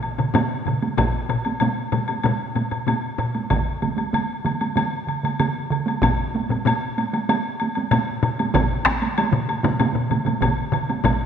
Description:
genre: japanese traditional, taiko drum ensemble.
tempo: 95 BPM.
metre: 4/4.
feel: straight.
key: none.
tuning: none.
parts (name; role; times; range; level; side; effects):
woodblock; percussion; 0.0-11.2 s; none; -26 LUFS; left 3 dB; none.
taiko ensemble; percussion; 0.2-11.2 s; none; -24 LUFS; left 3 dB; none.
taiko ensemble; percussion; 0.2-10.9 s; none; -26 LUFS; right 6 dB; none.
taiko ensemble; percussion; 0.3-11.2 s; none; -25 LUFS; right 4 dB; none.
solo taiko drums; percussion; 1.0-11.2 s; none; -26 LUFS; equal; none.
room: wet scoring stage reverb, RT60 2.1 s.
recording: none.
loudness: -20 LUFS.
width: side -8 dB against mid.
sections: 1.0-11.3 A section.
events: none.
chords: none.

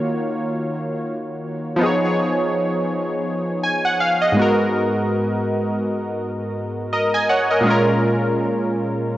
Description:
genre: R&B.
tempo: 82 BPM.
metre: 4/4.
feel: swing 58% on 16ths.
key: unclear.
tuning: A4 = 440 Hz.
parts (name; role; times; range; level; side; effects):
warm analog keys; solo; 0.0-9.2 s; Ab2 to Ab5; -18 LUFS; equal; chorus.
room: moderate lush hall reverb, RT60 2.5 s.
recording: worn, warbling old tape, cassette tape, warbly pitch drift, nothing above 7.8 kHz.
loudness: -18 LUFS.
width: side -14 dB against mid.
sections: 0.0-9.2 A section.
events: synth keys fill 3.3-4.7.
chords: 0.0 Ebm7; 1.8 Db7/F; 4.4 Abm7; 7.7 Bbm7.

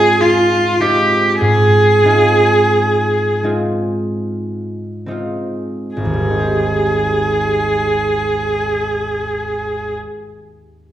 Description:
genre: classical, impressionist duo for cello and harp.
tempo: 33-51 BPM.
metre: 3/4.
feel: rubato.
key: Ab major.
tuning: A4 = 443 Hz.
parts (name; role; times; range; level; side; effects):
clear cello; melody; 0.0-9.9 s; F4 to Ab4; -14 LUFS; right 1 dB; none.
concert harp; accompaniment; 0.0-10.4 s; Ab1 to G4; -18 LUFS; equal; none.
room: wet recital hall reverb, RT60 1.3 s.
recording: recorded in a church or concert hall.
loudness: -13 LUFS.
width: side -12 dB against mid.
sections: 0.0-6.0 A section; 6.0-10.9 B section.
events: slowing down 0.0-6.0.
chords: 0.0 Ab6; 6.0 Abmaj7.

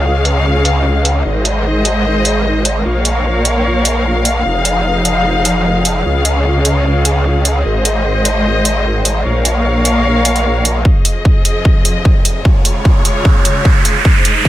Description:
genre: heavy wobble dubstep.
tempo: 150 BPM.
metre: 4/4.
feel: half-time.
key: unclear.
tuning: A4 = 444 Hz.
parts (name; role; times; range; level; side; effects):
rich studio string section; sustained chords; 0.0-14.5 s; F2 to F5; -16 LUFS; left 1 dB; sidechain pumping.
growl bass; bass; 0.0-10.8 s; F1 to Db2; -14 LUFS; equal; chorus, overdrive.
electronic hi-hat; drums; 0.3-14.3 s; none; -15 LUFS; right 1 dB; low-pass filter on cymbals, low-pass filter on hats, low-pass filter on snare.
electronic kick drum; drums; 10.9-14.5 s; none; -10 LUFS; equal; none.
riser; sound effects; 11.6-14.5 s; none; -18 LUFS; right 4 dB; none.
room: light reverb.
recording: none.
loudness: -11 LUFS.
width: side -14 dB against mid.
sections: 0.0-10.9 A section; 10.9-14.5 B section.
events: build-up 10.9-14.5; riser 11.6-14.5; drum fill 14.1-14.5.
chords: 0.0 Db; 1.3 Ab; 2.9 Bbm; 4.5 Fm7; 6.1 Db; 7.7 Ab; 9.3 Bbm; 10.9 Fm7; 12.5 Db.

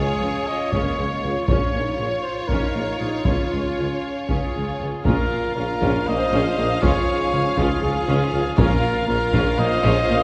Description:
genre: cinematic, epic orchestral film score.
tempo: 238 BPM (eighths).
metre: 7/8.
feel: straight.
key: Bb minor.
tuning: A4 = 443 Hz.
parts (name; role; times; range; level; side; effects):
warm symphonic violin section; melody; 0.0-10.2 s; Db5 to F5; -32 LUFS; equal; none.
warm symphonic violin section; second line; 0.0-10.2 s; F4 to C5; -34 LUFS; equal; none.
rich symphonic viola section; accompaniment; 0.0-10.2 s; F3 to F4; -32 LUFS; equal; none.
mellow French horn section; sustained chords; 0.0-10.2 s; Ab3 to F4; -33 LUFS; equal; none.
warm trumpet; stabs; 0.0-10.2 s; Eb4 to Eb5; -27 LUFS; equal; none.
clear tuba; bass; 0.0-10.2 s; Bb1 to Db2; -31 LUFS; equal; none.
dark symphonic cello section; bass; 0.0-10.2 s; Bb2 to Db3; -31 LUFS; equal; none.
rich symphonic double bass section; bass; 0.0-10.2 s; Bb1 to Db2; -32 LUFS; equal; none.
taiko ensemble; drums; 0.7-9.8 s; none; -27 LUFS; equal; none.
warm trombone section; sustained chords; 5.1-10.2 s; Ab2 to F3; -35 LUFS; equal; none.
timpani; percussion; 8.6-9.3 s; Bb2; -31 LUFS; equal; none.
room: wet scoring stage reverb, RT60 1.8 s.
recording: recorded in a church or concert hall.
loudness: -21 LUFS.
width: mono.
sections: 0.0-5.1 A section; 5.1-10.2 B section.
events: none.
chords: 0.0 Db; 1.5 Bbm; 3.3 Db; 5.1 Bbm; 6.8 Db; 8.6 Bbm.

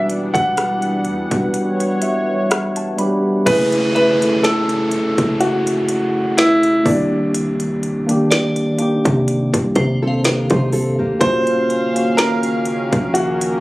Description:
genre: contemporary R&B.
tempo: 62 BPM.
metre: 4/4.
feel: swing 54% on 16ths.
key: unclear.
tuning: A4 = 439 Hz.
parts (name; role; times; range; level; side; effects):
mellow tine electric piano; accompaniment; 0.0-13.6 s; Eb3 to B5; -19 LUFS; equal; medium stereo tremolo.
warm analog pad; sustained chords; 0.0-3.5, 11.2-13.6 s; Db3 to F#5; -24 LUFS; equal; chorus.
warm 808-style bass; bass; 0.0-13.6 s; Eb1 to C3; -24 LUFS; equal; none.
trap drum kit; drums; 0.1-13.6 s; crash cymbal, hi-hat, kick drum, rim click, snare drum; -20 LUFS; equal; none.
warm concert grand piano; melody; 0.3-13.6 s; D4 to F#5; -18 LUFS; equal; none.
downlifter; sound effects; 3.5-11.2 s; none; -29 LUFS; equal; none.
glassy synth bell; texture; 3.9-11.8 s; C5 to F5; -28 LUFS; equal; chorus, ping-pong delay.
nylon-string guitar; arpeggios; 10.0-11.4 s; Bb3 to C5; -22 LUFS; equal; ping-pong delay.
room: digital ambience.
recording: recorded on a phone in the room, studio ambience, compression.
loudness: -15 LUFS.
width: side -19 dB against mid.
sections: 0.0-3.5 A section; 3.5-13.6 B section.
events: kick muted 1.5-3.5; tine electric piano fill 1.5-3.5.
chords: 0.0 Em9; 3.5 Gbm9; 6.9 Cm9; 11.2 Ebm9.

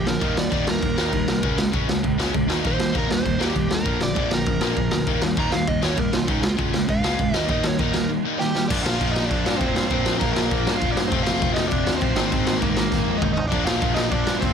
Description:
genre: punk rock.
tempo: 198 BPM.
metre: 4/4.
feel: straight.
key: Bb major.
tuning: A4 = 441 Hz.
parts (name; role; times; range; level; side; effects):
crunchy overdriven guitar; melody; 0.0-14.5 s; Bb3 to Bb5; -27 LUFS; right 2 dB; tape echo.
distorted electric guitar; riff; 0.0-14.5 s; F2 to F4; -26 LUFS; left 14 dB; distortion.
distorted electric guitar; riff; 0.0-14.5 s; F2 to Eb4; -28 LUFS; right 16 dB; distortion.
fuzz picked electric bass; bass; 0.0-14.5 s; F1 to G2; -28 LUFS; equal; overdrive.
raw garage drum kit; drums; 0.1-14.5 s; crash cymbal, kick drum, snare drum, toms; -24 LUFS; equal; none.
room: little or no reverb.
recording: none.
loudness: -19 LUFS.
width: side -7 dB against mid.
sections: 0.0-8.7 A section; 8.7-14.5 B section.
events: overdriven electric guitar solo 0.0-8.7; drum fill 8.4-8.7, 12.9-13.5.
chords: 0.2 Eb; 1.4 Db5; 2.5 Eb; 3.9 Bb; 5.1 Eb; 6.3 Db; 7.3 Eb; 8.7 Bb; 11.1 F; 12.2 Ab; 13.5 Bb.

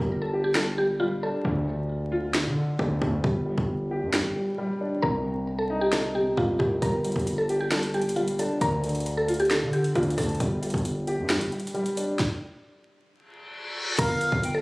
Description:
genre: hip hop, trap.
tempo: 134 BPM.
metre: 4/4.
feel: half-time.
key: G minor.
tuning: A4 = 441 Hz.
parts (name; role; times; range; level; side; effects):
mallet-like synth pluck; melody; 0.0-1.4, 5.0-10.3, 14.0-14.6 s; F4 to Bb4; -27 LUFS; equal; chorus, phaser, low-pass filter, digital delay.
dark baby grand piano; accompaniment; 0.0-12.2 s; C3 to G4; -29 LUFS; equal; low-pass filter.
distorted 808-style bass; bass; 0.0-14.6 s; G1 to D3; -30 LUFS; equal; distortion.
trap drum kit; drums; 0.6-14.5 s; crash cymbal, finger snaps, hi-hat, kick drum, snare drum; -28 LUFS; equal; none.
reverse cymbal; sound effects; 13.4-14.0 s; none; -32 LUFS; left 1 dB; none.
concert flute; second line; 14.0-14.6 s; F5 to G5; -27 LUFS; equal; digital delay.
room: light reverb, digital ambience.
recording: recorded on a phone in the room, studio reverb, vinyl crackle.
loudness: -24 LUFS.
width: side -24 dB against mid.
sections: 0.0-14.0 A section.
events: break 0.0-6.8, 10.4-14.0; stop 12.2-14.0; reverse cymbal 13.4-14.0.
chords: 0.0 Gm; 1.4 Dm; 3.2 G5; 5.0 Cm7; 6.8 Gm; 8.6 Dm; 10.4 G5; 12.2 N.C.; 14.0 Gm7.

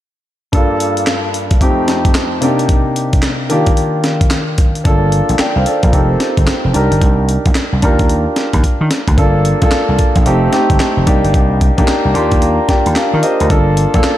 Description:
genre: R&B, new jack swing.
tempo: 111 BPM.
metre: 4/4.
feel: swing 63% on 16ths.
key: G minor.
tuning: A4 = 438 Hz.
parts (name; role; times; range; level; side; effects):
warm concert grand piano; accompaniment; 0.5-14.2 s; F2 to C6; -15 LUFS; equal; none.
breakbeat sampler-style drum kit; drums; 0.5-14.2 s; handclaps, hi-hat, kick drum, snare drum; -14 LUFS; equal; none.
vintage slap bass; bass; 4.9-14.1 s; F1 to Eb3; -14 LUFS; equal; none.
room: light reverb.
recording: dark, warm production.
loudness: -11 LUFS.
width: side -13 dB against mid.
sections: 0.5-9.2 A section; 9.2-14.2 B section.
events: drum fill 8.6-9.2; grand piano fill 11.9-13.5.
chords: 0.5 Gm7; 1.6 F7; 2.4 Cm7; 3.5 Ebmaj7; 4.9 Gm7; 5.9 F7; 6.7 Cm7; 7.8 Ebmaj7; 9.2 Gm7; 10.3 F7; 11.1 Cm7; 12.2 Ebmaj7; 13.5 Gm7.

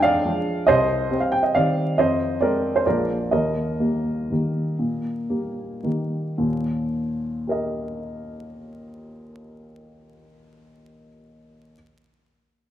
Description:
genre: classical, piano waltz.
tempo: 106-147 BPM.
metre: 3/4.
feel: rubato.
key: Eb major.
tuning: A4 = 440 Hz.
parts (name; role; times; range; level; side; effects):
warm upright piano; solo; 0.0-11.8 s; Bb1 to Ab5; -20 LUFS; equal; none.
room: wet recital hall reverb, RT60 1.9 s.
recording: vinyl crackle.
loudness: -20 LUFS.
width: side -11 dB against mid.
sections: 0.0-6.4 A section; 6.4-9.6 B section.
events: slowing down 2.6-6.4.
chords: 0.0 Bb7 (rootless); 0.7 Cm; 2.0 Fm7; 2.9 Bb7; 3.3 Eb.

